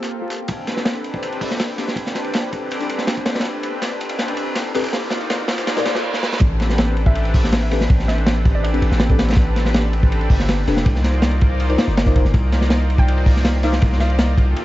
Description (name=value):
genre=drum and bass, jungle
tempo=162 BPM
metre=4/4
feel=straight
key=unclear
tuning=A4 = 440 Hz
part: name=lush unison pad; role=sustained chords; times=0.0-14.6 s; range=Bb3 to D5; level=-25 LUFS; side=equal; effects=chorus, vintage 12-bit sampler grit
part: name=deep mellow chord stab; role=stabs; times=0.0-13.7 s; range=Bb3 to D5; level=-27 LUFS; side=left 3 dB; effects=chorus, dub echo
part: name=breakbeat sampler-style drum kit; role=drums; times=0.0-6.0 s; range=hi-hat, snare drum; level=-33 LUFS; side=equal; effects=high-pass filter on hats, high-pass filter on snare
part: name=crunchy breakbeat drum kit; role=drums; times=0.5-14.6 s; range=hi-hat, kick drum, ride cymbal, snare drum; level=-19 LUFS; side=equal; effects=high-pass filter on kick, high-pass filter on cymbals, high-pass filter on hats, high-pass filter on snare, high-pass filter on room
part: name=riser and reverse cymbal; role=sound effects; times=2.9-6.4 s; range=none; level=-30 LUFS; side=right 2 dB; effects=none
part: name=long sustained 808-style bass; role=bass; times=6.4-14.5 s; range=E1 to C2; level=-18 LUFS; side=equal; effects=none
part: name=hollow square pluck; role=melody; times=7.1-8.7, 13.0-14.3 s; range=D5 to G5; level=-31 LUFS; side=right 1 dB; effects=chorus, dub echo
room=small room ambience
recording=dark, warm production, vinyl crackle, nothing above 7.7 kHz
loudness=-16 LUFS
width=side -16 dB against mid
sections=0.5-6.4 A section; 6.4-14.6 B section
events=build-up 0.5-6.4; filter sweep on synth stab 0.5-6.4; riser 2.9-6.0; drum fill 3.5-6.0, 6.1; reverse cymbal 5.7-6.4; drop 6.4-14.6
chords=0.5 Am11; 4.9 Cm11; 6.4 Am11; 10.9 Cm11